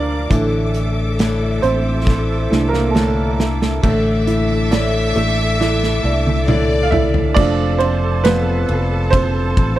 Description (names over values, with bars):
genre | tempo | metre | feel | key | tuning
pop ballad | 68 BPM | 4/4 | straight | unclear | A4 = 440 Hz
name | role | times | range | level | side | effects
warm upright piano | accompaniment | 0.0-9.8 s | E3 to F5 | -20 LUFS | right 4 dB | none
clear studio string section | sustained chords | 0.0-9.8 s | A4 to D6 | -28 LUFS | equal | none
picked steel-string acoustic guitar | arpeggios | 0.0-9.8 s | A2 to Bb4 | -22 LUFS | left 4 dB | none
fingered electric bass | bass | 0.0-9.8 s | F1 to D2 | -19 LUFS | equal | none
loose indie drum kit | drums | 0.3-9.8 s | crash cymbal, hi-hat, kick drum, ride cymbal, snare drum, toms | -19 LUFS | equal | none
warm studio violin section | second line | 3.8-7.4 s | D5 to E5 | -23 LUFS | left 2 dB | none
room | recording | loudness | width
little or no reverb | none | -14 LUFS | side -14 dB against mid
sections
0.0-3.8 A section; 3.8-7.4 B section; 7.4-9.8 C section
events
upright piano solo 0.0-3.8, 7.4-9.8; drum fill 2.1-3.8, 5.6-7.4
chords
0.3 Asus4; 7.4 F